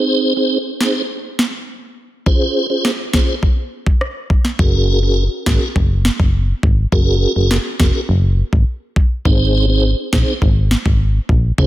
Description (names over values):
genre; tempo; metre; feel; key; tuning
dancehall; 103 BPM; 4/4; straight; Ab mixolydian; A4 = 440 Hz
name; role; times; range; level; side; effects
tonewheel organ; accompaniment; 0.0-11.7 s; C4 to C5; -18 LUFS; right 2 dB; chorus vibrato, fast rotary speaker
island pop drum kit; drums; 0.8-11.7 s; kick drum, rim click, snare drum; -16 LUFS; equal; overdrive
solid FM bass; bass; 4.6-11.7 s; F1 to Db2; -15 LUFS; equal; none
room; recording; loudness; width
light reverb, digital ambience; none; -14 LUFS; side -15 dB against mid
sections
0.0-11.7 A section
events
none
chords
0.0 Ab; 2.3 Dbmaj7; 4.6 Gbadd9; 9.3 Ab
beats
0.52 1.10 1.68 | 2.26 2.85 3.43 4.01 | 4.59 5.18 5.76 6.34 | 6.92 7.51 8.09 8.67 | 9.26 9.84 10.42 11.00 | 11.59